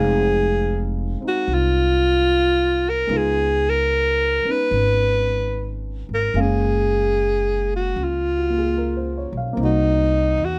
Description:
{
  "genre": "jazz ballad",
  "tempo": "74 BPM",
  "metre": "4/4",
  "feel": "swing 68% on 8ths",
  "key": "unclear",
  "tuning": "A4 = 438 Hz",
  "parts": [
    { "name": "warm alto saxophone", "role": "melody", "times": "0.0-10.6 s", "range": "Eb4 to Cb5", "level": "-22 LUFS", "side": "equal", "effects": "none" },
    { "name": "dark upright piano", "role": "accompaniment", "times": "0.0-10.6 s", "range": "Ab3 to F5", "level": "-30 LUFS", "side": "equal", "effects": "none" },
    { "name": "upright bass", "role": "bass", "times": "0.0-10.6 s", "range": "F1 to Db2", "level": "-25 LUFS", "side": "equal", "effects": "none" }
  ],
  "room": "little or no reverb",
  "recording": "none",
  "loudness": "-20 LUFS",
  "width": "mono",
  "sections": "0.0-10.6 A section",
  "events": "none",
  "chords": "0.0 Fm7; 3.1 Db13; 6.3 Gbmaj9; 9.6 Cm7b5"
}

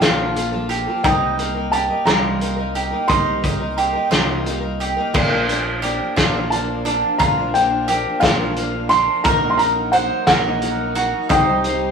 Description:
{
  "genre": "indie folk with a building arrangement",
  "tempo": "58 BPM (dotted quarters)",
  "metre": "6/8",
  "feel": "straight",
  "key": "Bb major",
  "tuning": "A4 = 440 Hz",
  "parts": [
    { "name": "felt-muted upright piano", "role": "melody", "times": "0.0-11.9 s", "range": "F5 to C6", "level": "-20 LUFS", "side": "equal", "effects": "none" },
    { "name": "picked plugged-in twelve-string acoustic guitar", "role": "accompaniment", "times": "0.0-11.9 s", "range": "Bb2 to C5", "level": "-25 LUFS", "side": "left 3 dB", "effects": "none" },
    { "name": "bowl-back mandolin", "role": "arpeggios", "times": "0.0-11.9 s", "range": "D4 to C5", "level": "-23 LUFS", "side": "right 4 dB", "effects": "none" },
    { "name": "fingered electric bass", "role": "bass", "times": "0.0-11.9 s", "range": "Bb1 to C2", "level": "-27 LUFS", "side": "equal", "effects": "none" },
    { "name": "loose indie drum kit", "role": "drums", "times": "0.0-11.8 s", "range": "crash cymbal, hi-hat, kick drum, snare drum", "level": "-21 LUFS", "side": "equal", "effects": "none" },
    { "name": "warm chamber string section", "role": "sustained chords", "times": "5.1-11.9 s", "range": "C3 to G4", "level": "-32 LUFS", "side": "left 1 dB", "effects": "none" }
  ],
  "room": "moderate studio reverb, RT60 0.6 s",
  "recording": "rough rehearsal-room recording, warm saturation, small room ambience",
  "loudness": "-16 LUFS",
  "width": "side -6 dB against mid",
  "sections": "0.0-5.1 A section; 5.1-11.9 B section",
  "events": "none",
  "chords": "0.0 Bbmaj7; 1.0 Cm7; 5.1 Bb; 9.2 Ebm/Bb; 11.3 Cm"
}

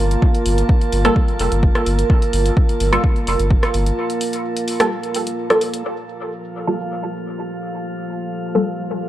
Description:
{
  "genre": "dub techno",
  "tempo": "128 BPM",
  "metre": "4/4",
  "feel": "straight",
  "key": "G minor",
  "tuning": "A4 = 442 Hz",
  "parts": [
    { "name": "dark analog pad", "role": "sustained chords", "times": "0.0-9.1 s", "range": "Bb3 to Bb4", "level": "-24 LUFS", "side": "right 2 dB", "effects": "chorus, sidechain pumping" },
    { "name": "warm sub bass", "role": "bass", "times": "0.0-3.9 s", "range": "F1 to G1", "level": "-19 LUFS", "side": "equal", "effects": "tube saturation, sidechain pumping" },
    { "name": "drifting glass-harmonics texture", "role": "texture", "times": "0.0-9.1 s", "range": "F3 to A5", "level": "-28 LUFS", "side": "right 2 dB", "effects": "chorus, built-in reverb, sidechain pumping" },
    { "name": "punchy analog drum machine", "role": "drums", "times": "0.1-5.8 s", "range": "hi-hat, rim click", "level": "-25 LUFS", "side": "equal", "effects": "overdrive, low-pass filter on snare, low-pass filter on hats, dub echo" },
    { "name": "electronic kick drum", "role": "drums", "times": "0.2-3.6 s", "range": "none", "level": "-15 LUFS", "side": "equal", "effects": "overdrive" },
    { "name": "filtered dub chord stab", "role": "stabs", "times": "1.0-8.7 s", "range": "G3 to A4", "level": "-21 LUFS", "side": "equal", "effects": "phaser, sidechain pumping, dub echo" }
  ],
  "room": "light reverb",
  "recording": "dry, gritty hardware recording, cassette tape",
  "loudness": "-16 LUFS",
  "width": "side -13 dB against mid",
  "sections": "0.0-5.8 A section; 5.8-9.1 B section",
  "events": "break 4.0-5.8",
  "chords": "0.0 Gm9"
}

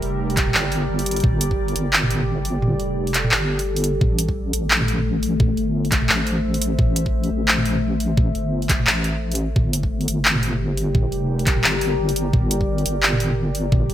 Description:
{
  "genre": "half-time drum and bass",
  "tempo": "173 BPM",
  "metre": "4/4",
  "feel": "swing 58% on 16ths, half-time",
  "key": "unclear",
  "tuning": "A4 = 440 Hz",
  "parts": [
    { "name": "deep dark ambient pad", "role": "sustained chords", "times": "0.0-13.9 s", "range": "G3 to E5", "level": "-25 LUFS", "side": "left 1 dB", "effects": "chorus, built-in reverb, sidechain pumping" },
    { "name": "deep soft wobble bass", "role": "bass", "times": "0.0-13.9 s", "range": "F1 to A1", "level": "-23 LUFS", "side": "equal", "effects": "chorus" },
    { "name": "drum and bass drum kit", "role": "drums", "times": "0.0-13.9 s", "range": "handclaps, hi-hat, toms", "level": "-20 LUFS", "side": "equal", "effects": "overdrive, gated reverb" },
    { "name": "electronic kick drum", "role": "drums", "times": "0.4-1.6, 4.0-13.8 s", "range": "none", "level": "-20 LUFS", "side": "equal", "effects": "overdrive" }
  ],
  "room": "light reverb",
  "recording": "bright 1980s-style digital production",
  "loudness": "-18 LUFS",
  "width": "side -12 dB against mid",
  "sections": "0.0-13.9 A section",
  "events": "kick drops out 2.6-4.0",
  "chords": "0.0 Gm; 4.0 Am; 9.6 Gm"
}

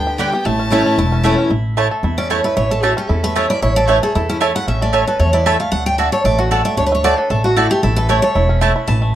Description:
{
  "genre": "bluegrass",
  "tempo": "228 BPM",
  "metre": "4/4",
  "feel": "swing 53% on 8ths",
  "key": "A mixolydian",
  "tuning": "A4 = 439 Hz",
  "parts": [
    { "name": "bluegrass banjo", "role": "melody", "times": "0.0-9.2 s", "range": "E3 to A4", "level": "-21 LUFS", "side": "right 1 dB", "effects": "plate reverb" },
    { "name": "clear fiddle", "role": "melody", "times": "0.0-1.2 s", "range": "G5 to A5", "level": "-23 LUFS", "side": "left 2 dB", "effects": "plate reverb" },
    { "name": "picked steel-string acoustic guitar", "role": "accompaniment", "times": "0.0-9.2 s", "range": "E2 to A5", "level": "-18 LUFS", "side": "equal", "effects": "none" },
    { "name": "upright bass", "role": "bass", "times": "0.0-9.2 s", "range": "E1 to E2", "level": "-18 LUFS", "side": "equal", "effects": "none" },
    { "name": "mandolin", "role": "stabs", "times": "0.2-8.7 s", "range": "A3 to A5", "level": "-17 LUFS", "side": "right 3 dB", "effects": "none" }
  ],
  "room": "moderate small room reverb, RT60 0.5 s",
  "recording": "lossy compression artefacts",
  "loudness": "-13 LUFS",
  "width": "side -12 dB against mid",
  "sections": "0.0-1.5 A section; 1.5-9.2 B section",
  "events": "steel-string acoustic guitar solo 1.5-9.2",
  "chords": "0.5 A; 5.7 D; 7.8 A"
}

